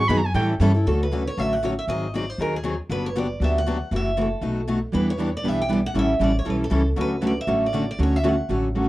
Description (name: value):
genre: acoustic string swing (jazz manouche)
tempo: 236 BPM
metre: 4/4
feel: swing 55% on 8ths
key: D major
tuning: A4 = 440 Hz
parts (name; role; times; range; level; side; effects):
- picked steel-string acoustic guitar; accompaniment; 0.0-8.9 s; B2 to A4; -25 LUFS; left 2 dB; none
- picked steel-string acoustic guitar; accompaniment; 0.0-0.7, 4.9-8.9 s; D3 to B4; -25 LUFS; right 2 dB; none
- upright bass; bass; 0.0-8.9 s; F#1 to A2; -25 LUFS; equal; none
- picked steel-string acoustic guitar; melody; 0.9-8.5 s; G#4 to G5; -27 LUFS; right 2 dB; none
room: moderate club ambience, RT60 0.5 s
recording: worn, warbling old tape, cassette tape, warbly pitch drift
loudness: -20 LUFS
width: side -17 dB against mid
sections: 0.9-8.9 A section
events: none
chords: 0.4 A7; 0.9 Dmaj7; 1.9 G#7; 2.9 Gmaj7; 3.9 F#m7b5; 4.4 B7; 4.9 Em7; 6.0 A7; 7.0 Dmaj7